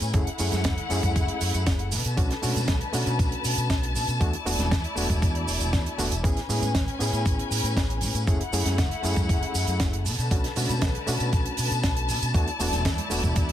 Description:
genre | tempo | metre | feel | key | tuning
nu-disco, nu disco | 118 BPM | 4/4 | straight | B dorian | A4 = 437 Hz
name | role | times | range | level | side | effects
overdriven reed electric piano | accompaniment | 0.0-13.5 s | A3 to G#4 | -32 LUFS | equal | fast tremolo, tape echo
warm symphonic string section | sustained chords | 0.0-13.5 s | D3 to A5 | -31 LUFS | left 4 dB | sidechain pumping
overdriven fingered electric bass | bass | 0.0-13.5 s | E1 to B2 | -28 LUFS | equal | none
tight funk drum kit | drums | 0.0-13.5 s | hi-hat, shaker, snare drum | -30 LUFS | right 3 dB | none
maracas and congas | percussion | 0.0-13.5 s | none | -39 LUFS | right 5 dB | none
electronic kick drum | drums | 0.1-13.5 s | none | -25 LUFS | equal | none
room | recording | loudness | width
small room ambience | none | -23 LUFS | side -11 dB against mid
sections
0.0-13.5 A section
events
none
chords
0.1 F#m7; 1.9 Bm7; 4.2 E7sus4; 6.2 Amaj9; 8.3 F#m7; 10.1 Bm7; 12.3 E7sus4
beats
| 0.14 0.65 1.16 1.66 | 2.17 2.68 3.19 3.70 | 4.21 4.71 5.22 5.73 | 6.24 6.75 7.26 7.77 | 8.27 8.78 9.29 9.80 | 10.31 10.82 11.32 11.83 | 12.34 12.85 13.36

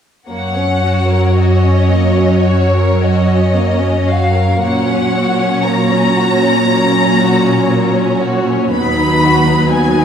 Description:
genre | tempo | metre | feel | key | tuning
classical, slow romantic movement for string orchestra | 54-60 BPM | 4/4 | rubato | F# major | A4 = 441 Hz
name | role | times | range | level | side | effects
rich symphonic violin section | melody | 0.3-10.0 s | C#5 to B5 | -18 LUFS | left 3 dB | none
warm symphonic violin section | second line | 0.3-10.0 s | A#3 to C#5 | -18 LUFS | left 1 dB | none
rich symphonic viola section | accompaniment | 0.3-10.0 s | F#3 to D#4 | -16 LUFS | right 2 dB | none
warm symphonic cello section | bass | 0.3-10.0 s | D#2 to A#2 | -15 LUFS | equal | none
room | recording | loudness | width
wet recital hall reverb, RT60 1.4 s | heard from further back in the room | -11 LUFS | side -8 dB against mid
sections
0.3-10.0 A section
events
none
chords
0.3 F#; 4.6 F#/A#; 8.7 B/D#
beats
| 0.30 1.38 2.48 3.56 | 4.62 5.65 6.68 7.70 | 8.72 9.72

